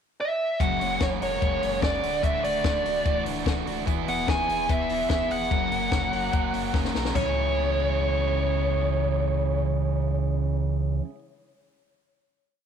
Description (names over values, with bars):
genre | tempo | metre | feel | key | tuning
jangly indie pop | 146 BPM | 4/4 | straight | C# dorian | A4 = 438 Hz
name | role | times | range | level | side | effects
dark smooth lead guitar | melody | 0.2-11.0 s | C#5 to G#5 | -27 LUFS | equal | overdrive, tape echo
biting overdriven guitar | accompaniment | 0.6-11.2 s | F#2 to A#4 | -29 LUFS | right 9 dB | none
electric guitar through a small old amp | arpeggios | 0.6-11.1 s | C#3 to A#4 | -33 LUFS | left 12 dB | none
warm sub bass | bass | 0.6-11.0 s | D1 to C#2 | -30 LUFS | equal | none
compact cocktail drum kit | drums | 0.6-7.2 s | hi-hat, kick drum, snare drum, splash cymbal, toms | -28 LUFS | left 2 dB | none
room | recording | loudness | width
moderate spring reverb, RT60 1.7 s | 1960s-style stereo with parts hard left and right | -23 LUFS | side -8 dB against mid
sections
0.0-0.6 pickup bar; 0.6-7.2 pre-chorus; 7.2-10.4 final chord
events
drum fill 6.7-7.2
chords
0.0 N.C.; 0.6 F#add9; 2.0 Dadd9; 3.9 E; 5.5 F#; 7.2 C#m